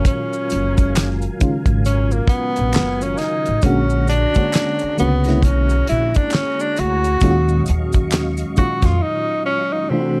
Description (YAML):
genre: R&B, neo-soul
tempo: 67 BPM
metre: 4/4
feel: swing 61% on 16ths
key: unclear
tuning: A4 = 440 Hz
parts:
  - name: breathy tenor saxophone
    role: melody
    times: 0.0-10.2 s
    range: A#3 to F#4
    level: -23 LUFS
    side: equal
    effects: slapback echo
  - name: FM electric piano with tremolo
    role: accompaniment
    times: 0.0-10.2 s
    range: A#2 to C#5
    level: -25 LUFS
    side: equal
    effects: none
  - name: tonewheel organ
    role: sustained chords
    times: 0.0-10.2 s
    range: F#3 to C#6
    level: -34 LUFS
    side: equal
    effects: overdrive, chorus vibrato, slow rotary speaker
  - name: maracas and finger snaps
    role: percussion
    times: 0.0-9.0 s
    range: none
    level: -36 LUFS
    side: equal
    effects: none
  - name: damped 70s drum kit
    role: drums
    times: 0.1-9.0 s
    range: handclaps, hi-hat, kick drum, snare drum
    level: -20 LUFS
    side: equal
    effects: none
  - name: upright bass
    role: bass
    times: 0.5-9.0 s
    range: F#1 to E#2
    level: -22 LUFS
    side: equal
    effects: none
room: light reverb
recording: dark, warm production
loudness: -18 LUFS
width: mono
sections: 0.0-10.2 A section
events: tenor saxophone solo 0.0-10.2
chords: 0.0 F#maj9; 3.6 A#7alt; 7.2 D#m9